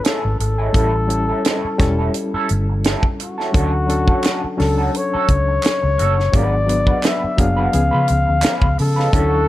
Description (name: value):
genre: lush 1970s-style soul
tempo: 86 BPM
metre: 4/4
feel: swing 54% on 16ths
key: unclear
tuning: A4 = 440 Hz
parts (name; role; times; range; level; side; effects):
- mellow flugelhorn; melody; 0.0-9.5 s; F#4 to E#5; -21 LUFS; left 3 dB; tape echo
- reed electric piano; accompaniment; 0.0-9.5 s; E#3 to B4; -23 LUFS; left 2 dB; fast tremolo
- electric guitar through a small old amp; riff; 0.0-9.5 s; G3 to C#5; -25 LUFS; right 3 dB; wah, tube saturation
- tight funk drum kit; drums; 0.0-9.3 s; hi-hat, kick drum, snare drum; -19 LUFS; equal; none
- vintage muted fingered electric bass; bass; 0.2-9.5 s; E1 to C#3; -19 LUFS; equal; none
- group handclap; percussion; 4.2-8.6 s; none; -27 LUFS; right 2 dB; none
room: studio reverb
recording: none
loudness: -15 LUFS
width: side -15 dB against mid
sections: 0.0-9.1 A section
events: none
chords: 0.0 Amaj7; 0.7 A7; 3.5 Dmaj7; 6.3 G#m7b5; 7.7 C#7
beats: 0.04 | 0.74 1.44 2.14 2.84 | 3.54 4.24 4.94 5.64 | 6.34 7.04 7.74 8.44 | 9.13